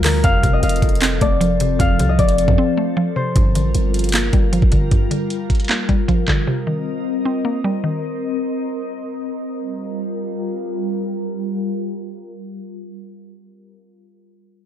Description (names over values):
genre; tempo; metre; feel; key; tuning
hip hop, trap; 154 BPM; 4/4; half-time; G minor; A4 = 440 Hz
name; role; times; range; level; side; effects
Celtic harp; melody; 0.0-5.1 s; Bb4 to F5; -21 LUFS; left 4 dB; low-pass filter, analog delay
mallet-like synth pluck; accompaniment; 0.0-8.8 s; F2 to C4; -21 LUFS; equal; chorus, low-pass filter
glassy FM pad; sustained chords; 0.0-13.5 s; F3 to Eb5; -23 LUFS; left 1 dB; ensemble chorus, built-in reverb
warm 808-style bass; bass; 0.0-4.9 s; F1 to F2; -19 LUFS; equal; none
trap drum kit; drums; 0.0-6.4 s; handclaps, hi-hat, kick drum; -18 LUFS; equal; none
room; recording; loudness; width
little or no reverb; dry, gritty hardware recording, cassette tape, low-pass filter; -16 LUFS; side -10 dB against mid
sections
0.0-3.4 A section; 3.4-9.6 B section; 9.6-12.7 C section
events
break 2.6-3.4; filter sweep 3.4-9.6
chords
0.2 F; 3.4 Gm7; 6.5 Cm7; 9.6 Gm7